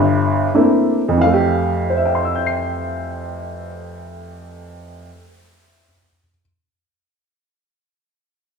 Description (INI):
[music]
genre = solo jazz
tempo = 90 BPM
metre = 4/4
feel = swing 66% on 8ths, rubato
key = F major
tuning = A4 = 439 Hz
[part]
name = clear upright piano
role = solo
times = 0.0-6.4 s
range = G1 to C7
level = -16 LUFS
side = equal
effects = none
[sound]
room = wet large studio reverb, RT60 0.9 s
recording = band playing live in one room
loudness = -15 LUFS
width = side -5 dB against mid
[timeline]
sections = 0.0-1.2 A section; 1.2-6.6 B section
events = slowing down 0.0-1.2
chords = 0.0 C13; 1.2 Fmaj9